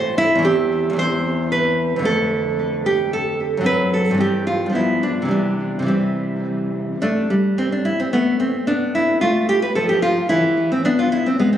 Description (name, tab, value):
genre	classical, baroque-style dance for nylon-string guitar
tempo	111 BPM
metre	3/4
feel	rubato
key	C major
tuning	A4 = 440 Hz
part	nylon-string guitar	solo	0.0-11.6 s	E2 to C5	-16 LUFS	equal	tape echo
room	moderate concert hall reverb, RT60 2.1 s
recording	recorded on a phone in the room, club reverb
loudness	-17 LUFS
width	side -10 dB against mid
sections	0.0-7.0 A section; 7.0-11.6 A section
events	none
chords	0.5 C/E; 2.1 Dm/F; 3.7 F#dim; 4.2 C/G; 4.8 G7; 5.3 C; 7.0 Gadd9; 8.7 Fmaj9#11; 10.3 E